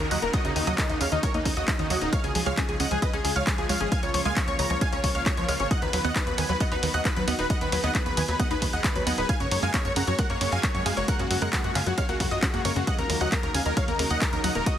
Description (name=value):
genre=uplifting trance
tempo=134 BPM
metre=4/4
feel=straight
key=Eb minor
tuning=A4 = 440 Hz
part: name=dense compressed supersaw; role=melody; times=0.0-14.7 s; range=Eb4 to Bb5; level=-29 LUFS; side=equal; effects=sidechain pumping, digital delay
part: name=analog pluck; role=second line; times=0.0-14.7 s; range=Eb5 to Bb6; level=-34 LUFS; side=left 2 dB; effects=chorus, sidechain pumping
part: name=lush unison pad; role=sustained chords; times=0.0-14.8 s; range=Db3 to Ab4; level=-34 LUFS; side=left 1 dB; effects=chorus, sidechain pumping
part: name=tight sequenced synth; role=arpeggios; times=0.0-14.6 s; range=Db3 to D#4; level=-33 LUFS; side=right 2 dB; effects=chorus, phaser, sidechain pumping, digital delay
part: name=tight sequencer bass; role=bass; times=0.0-14.6 s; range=Eb1 to Gb2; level=-30 LUFS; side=equal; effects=sidechain pumping
part: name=punchy analog drum machine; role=drums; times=0.0-14.8 s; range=handclaps, hi-hat, ride cymbal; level=-31 LUFS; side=equal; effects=sidechain pumping on hats, sidechain pumping on cymbals
part: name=downlifter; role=sound effects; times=0.0-2.1 s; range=none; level=-41 LUFS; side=equal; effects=none
part: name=electronic kick drum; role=drums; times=0.3-14.8 s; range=none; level=-28 LUFS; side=equal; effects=none
room=little or no reverb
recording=heavily compressed radio sound, multiband compression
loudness=-23 LUFS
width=side -10 dB against mid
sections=0.0-14.8 A section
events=none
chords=0.0 Ebm7; 2.1 Db; 5.7 B/D#; 9.3 Gbadd9; 12.9 Ebm7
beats=| 0.34 0.78 1.23 1.68 | 2.13 2.57 3.02 3.47 | 3.92 4.37 4.81 5.26 | 5.71 6.16 6.60 7.05 | 7.50 7.95 8.39 8.84 | 9.29 9.74 10.19 10.63 | 11.08 11.53 11.98 12.43 | 12.87 13.32 13.77 14.22 | 14.66